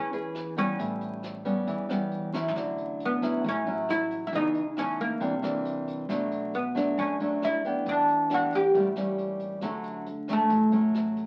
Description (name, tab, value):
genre	bossa nova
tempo	136 BPM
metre	4/4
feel	straight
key	A major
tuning	A4 = 436 Hz
part	oud	melody	0.0-11.3 s	A3 to G4	-28 LUFS	equal	none
part	nylon-string guitar	accompaniment	0.0-11.3 s	F#2 to B4	-32 LUFS	equal	none
part	upright bass	bass	0.0-11.3 s	A1 to F#2	-45 LUFS	equal	none
part	jazz brush drum kit	drums	0.1-11.3 s	hi-hat, kick drum, rim click, snare drum, toms	-47 LUFS	equal	none
room	moderate studio reverb, RT60 0.5 s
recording	very old 78 rpm record, vinyl crackle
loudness	-28 LUFS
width	mono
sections	0.0-11.3 A section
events	drum fill 2.3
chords	0.0 Amaj9 (rootless); 0.8 A9; 2.6 Dmaj9; 4.3 C#m9; 5.2 C9; 6.1 Bm7; 7.9 Em7; 8.7 A7b9; 9.6 Dmaj7